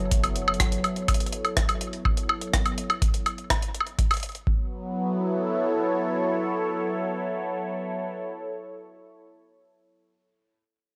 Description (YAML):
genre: IDM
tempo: 124 BPM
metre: 4/4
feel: straight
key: F# minor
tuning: A4 = 440 Hz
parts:
  - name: phased analog pad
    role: sustained chords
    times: 0.0-8.5 s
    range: F#3 to C#5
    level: -30 LUFS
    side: equal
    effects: phaser, chorus
  - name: woody FM bass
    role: bass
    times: 0.0-0.8 s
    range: F#1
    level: -35 LUFS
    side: equal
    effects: transformer saturation
  - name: electronic kick drum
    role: drums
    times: 0.1-4.6 s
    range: none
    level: -28 LUFS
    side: equal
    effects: overdrive
  - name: jungle sampler-style drum kit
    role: drums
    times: 0.1-4.4 s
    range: hi-hat, rim click, woodblock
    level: -29 LUFS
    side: equal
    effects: none
room: light reverb, digital ambience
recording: dry, gritty hardware recording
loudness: -26 LUFS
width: mono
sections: 0.0-4.7 A section; 4.7-8.6 B section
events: filter sweep on analog synth pad 0.0-2.8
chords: 0.0 F#m7; 4.5 F#sus4; 4.7 F#m7